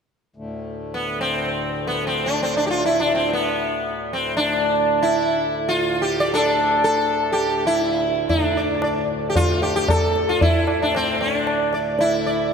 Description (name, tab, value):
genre	indian classical, Hindustani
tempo	free time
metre	none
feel	none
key	D raga bhimpalasi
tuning	A4 = 440 Hz
part	hand-pumped harmonium	drone	0.4-12.5 s	D2 to A2	-28 LUFS	left 2 dB	none
part	sitar	melody	0.9-12.5 s	B3 to D5	-19 LUFS	equal	diffuse ambient delay
part	tabla	percussion	8.3-12.2 s	none	-23 LUFS	equal	none
room	wet lush hall reverb, RT60 2.4 s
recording	dreamy mix soaked in reverb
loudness	-18 LUFS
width	side -6 dB against mid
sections	0.4-8.3 A section; 8.3-12.5 B section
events	none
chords	none